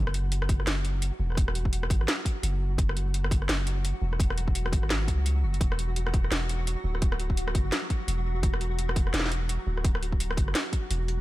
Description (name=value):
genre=half-time drum and bass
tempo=170 BPM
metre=4/4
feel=swing 59% on 16ths, half-time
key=unclear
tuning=A4 = 442 Hz
part: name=long sustained 808-style bass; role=bass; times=0.0-11.2 s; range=D1 to C#2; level=-28 LUFS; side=equal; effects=none
part: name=drum and bass drum kit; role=drums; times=0.0-11.2 s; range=hi-hat, rim click, snare drum, toms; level=-32 LUFS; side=equal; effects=none
part: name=pulsing gated texture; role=texture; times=0.0-11.2 s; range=F#3 to F#4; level=-38 LUFS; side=equal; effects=chorus, built-in reverb
part: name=electronic kick drum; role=drums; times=0.5-10.8 s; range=none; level=-26 LUFS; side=equal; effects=overdrive
room=little or no reverb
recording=none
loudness=-25 LUFS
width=side -17 dB against mid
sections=0.0-11.2 A section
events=none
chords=0.0 F#5; 5.6 Dadd9